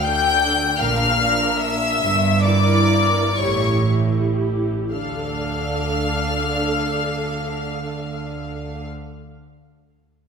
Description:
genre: classical, slow romantic movement for string orchestra.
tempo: 36-55 BPM (dotted quarters).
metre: 6/8.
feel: rubato.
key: D minor.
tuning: A4 = 440 Hz.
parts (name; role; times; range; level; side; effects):
warm symphonic violin section; melody; 0.0-8.8 s; C#6 to G6; -23 LUFS; left 4 dB; none.
warm chamber violin section; second line; 0.0-8.9 s; C#5 to G5; -25 LUFS; left 5 dB; none.
dark symphonic viola section; accompaniment; 0.0-8.9 s; D4 to Bb4; -25 LUFS; right 2 dB; none.
dark symphonic double bass section; bass; 0.0-8.9 s; G1 to D2; -26 LUFS; right 3 dB; none.
warm symphonic cello section; bass; 0.0-8.9 s; D2 to D3; -25 LUFS; right 2 dB; none.
room: wet scoring stage reverb, RT60 1.9 s.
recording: minimal, uncompressed stereo recording.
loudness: -18 LUFS.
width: side -6 dB against mid.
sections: 0.0-4.9 A section; 4.9-10.3 B section.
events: slowing down 0.0-4.9.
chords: 0.0 D5; 0.8 Bb; 2.0 Em7b5/G; 3.4 A5; 4.9 Dm.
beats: 0.79 | 2.01 3.38 | 4.93 6.48 | 8.04.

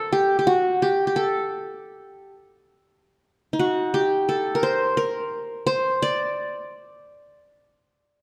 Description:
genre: arabic.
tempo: 86 BPM.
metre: 4/4.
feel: straight.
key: D maqam hijaz.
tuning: A4 = 440 Hz.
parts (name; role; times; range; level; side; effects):
qanun; solo; 0.0-8.2 s; Eb4+25c to D5; -23 LUFS; equal; none.
room: wet scoring stage reverb, RT60 1.9 s.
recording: dark, warm production.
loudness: -23 LUFS.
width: mono.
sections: 0.0-8.2 A section.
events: none.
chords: none.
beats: | 0.46 1.15 1.85 2.54 | 3.24 3.94 4.63 5.33 | 6.02 6.72 7.41 8.11.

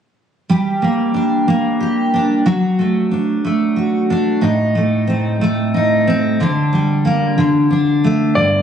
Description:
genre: pop.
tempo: 61 BPM (dotted quarters).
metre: 6/8.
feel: straight.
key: G harmonic minor.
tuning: A4 = 440 Hz.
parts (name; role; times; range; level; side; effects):
fingerpicked steel-string acoustic guitar; accompaniment; 0.5-8.6 s; G2 to G4; -14 LUFS; equal; double-tracked left and right.
clear concert grand piano; melody; 8.4-8.6 s; D5; -14 LUFS; left 1 dB; none.
fretless electric bass; bass; 8.4-8.6 s; G1; -21 LUFS; left 1 dB; none.
room: moderate echo chamber reverb, RT60 2.3 s.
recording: recorded on a phone in the room, compression.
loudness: -14 LUFS.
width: side -8 dB against mid.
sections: 0.5-8.4 A section.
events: none.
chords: 0.5 Gm; 2.5 D/F#; 4.4 Adim; 6.4 Gm/D; 7.4 D5.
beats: | 0.49 1.48 | 2.46 3.44 | 4.43 5.41 | 6.39 7.38 | 8.36.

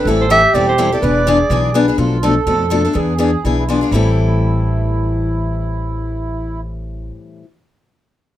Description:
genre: acoustic string swing (jazz manouche).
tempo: 248 BPM.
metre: 4/4.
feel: swing 56% on 8ths.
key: A minor.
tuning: A4 = 439 Hz.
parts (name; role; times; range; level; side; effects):
mellow accordion; second line; 0.0-6.6 s; E4 to B4; -21 LUFS; right 4 dB; none.
picked steel-string acoustic guitar; accompaniment; 0.0-7.5 s; A2 to A4; -18 LUFS; left 4 dB; none.
upright bass; bass; 0.1-7.1 s; E1 to F2; -18 LUFS; equal; none.
breathy clarinet; melody; 0.2-1.9 s; C5 to E5; -15 LUFS; right 1 dB; plate reverb.
room: light reverb.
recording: close, detailed microphones.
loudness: -13 LUFS.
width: side -13 dB against mid.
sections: 0.0-2.0 A section; 2.0-3.9 B section; 3.9-5.9 C section.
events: none.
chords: 0.1 Am7; 1.0 E7; 2.0 Bm7b5; 3.0 E7b9; 3.9 Am7.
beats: | 0.06 0.30 0.54 0.79 | 1.03 1.27 1.51 1.75 | 1.99 2.23 2.47 2.71 | 2.96 3.20 3.44 3.68 | 3.92 4.16 4.41 4.65 | 4.89 5.13 5.37 5.61.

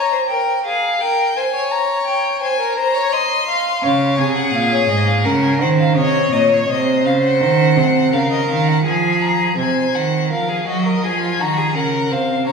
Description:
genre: classical, baroque-style fugue for string quartet.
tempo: 84 BPM.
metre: 4/4.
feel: straight.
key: Db major.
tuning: A4 = 440 Hz.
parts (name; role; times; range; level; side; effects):
warm violin; melody; 0.0-12.5 s; Db5 to C6; -20 LUFS; left 4 dB; none.
rich violin; second line; 0.0-12.5 s; F4 to F5; -19 LUFS; right 1 dB; none.
rich cello; bass; 3.8-12.5 s; Ab2 to Gb3; -17 LUFS; right 2 dB; none.
room: wet scoring stage reverb, RT60 1.8 s.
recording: recorded in a church or concert hall.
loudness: -14 LUFS.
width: side -5 dB against mid.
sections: 0.0-9.6 A section; 9.6-12.5 B section.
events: none.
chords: 0.0 Bb7(no3); 1.0 Gdim/Bb; 2.4 Ab; 3.8 Db; 5.3 Eb7(no3)/Db; 6.7 Cdim; 8.1 Db; 9.6 Cdim; 11.0 Fm7.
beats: 0.30 | 1.01 1.72 2.43 3.13 | 3.83 4.54 5.25 5.97 | 6.69 7.41 8.13 8.85 | 9.57 10.31 11.04 11.76 | 12.48.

